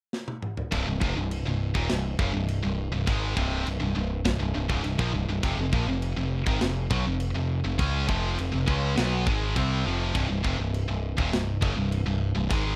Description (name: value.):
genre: heavy metal.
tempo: 102 BPM.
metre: 4/4.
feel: straight.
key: C minor.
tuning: A4 = 440 Hz.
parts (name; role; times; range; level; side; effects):
tight metal drum kit; drums; 0.1-12.6 s; crash cymbal, kick drum, snare drum, toms; -34 LUFS; equal; none.
heavy high-gain guitar; riff; 0.7-12.8 s; C2 to Db4; -31 LUFS; equal; distortion.
growling picked electric bass; bass; 0.7-12.8 s; C1 to Db2; -30 LUFS; equal; overdrive.
room: light reverb.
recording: rough home demo mix.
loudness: -27 LUFS.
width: mono.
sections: 0.7-12.8 A section.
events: drum fill 0.1-0.7.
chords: 0.0 N.C.; 0.7 Cm; 5.4 F5; 10.2 Cm.